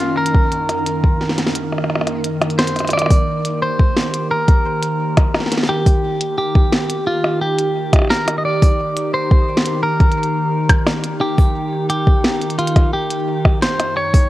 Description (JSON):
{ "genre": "IDM", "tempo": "87 BPM", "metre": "4/4", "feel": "straight", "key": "Eb major", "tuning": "A4 = 439 Hz", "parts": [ { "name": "clean electric guitar", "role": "melody", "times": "0.0-14.3 s", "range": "F4 to Eb5", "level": "-21 LUFS", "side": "equal", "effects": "vintage 12-bit sampler grit, tape echo" }, { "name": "warbly tape-like pad", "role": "sustained chords", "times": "0.0-14.3 s", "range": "Gb2 to Bb4", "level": "-22 LUFS", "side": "right 1 dB", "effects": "chorus, built-in reverb" }, { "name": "glitchy drum kit", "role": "drums", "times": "0.0-14.3 s", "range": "hi-hat, percussion blips, snare drum", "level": "-20 LUFS", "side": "equal", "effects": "none" }, { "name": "flickering grainy texture", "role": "texture", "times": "0.1-2.9 s", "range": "Eb4", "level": "-32 LUFS", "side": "right 3 dB", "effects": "built-in reverb, sidechain pumping" }, { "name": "electronic kick drum", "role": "drums", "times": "0.3-14.3 s", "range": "none", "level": "-13 LUFS", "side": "equal", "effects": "none" } ], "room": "light reverb", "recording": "worn, warbling old tape, cassette tape, warbly pitch drift", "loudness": "-14 LUFS", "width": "side -15 dB against mid", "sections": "0.0-2.9 A section; 2.9-14.3 B section", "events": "break 1.6-2.9; drum fill 2.6-2.9", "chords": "0.0 Gb; 2.9 Eb; 13.6 Gb", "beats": "| 0.17 0.86 1.55 2.24 | 2.93 3.62 4.31 5.00 | 5.69 6.38 7.07 7.76 | 8.45 9.14 9.83 10.52 | 11.21 11.90 12.59 13.28 | 13.97" }